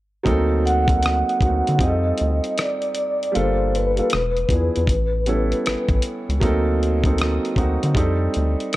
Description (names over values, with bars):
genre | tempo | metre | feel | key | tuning
R&B, neo-soul | 78 BPM | 4/4 | swing 64% on 16ths | unclear | A4 = 440 Hz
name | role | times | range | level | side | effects
dark upright piano | accompaniment | 0.2-8.8 s | F3 to A4 | -23 LUFS | right 2 dB | none
rubbery square bass | bass | 0.3-8.6 s | E1 to D3 | -22 LUFS | equal | none
dusty soul sampler-style drum kit | drums | 0.3-8.8 s | hi-hat, kick drum, rim click | -22 LUFS | equal | none
vibraphone with soft mallets | melody | 0.7-6.0 s | B4 to F#5 | -23 LUFS | equal | none
room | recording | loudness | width
studio ambience | dark, warm production | -18 LUFS | side -17 dB against mid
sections
0.3-8.8 A section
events
none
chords
0.3 D7b9b13; 1.8 F13; 3.3 Gm9; 4.1 E7b9; 4.9 A7; 6.4 D7b9b13; 7.9 F13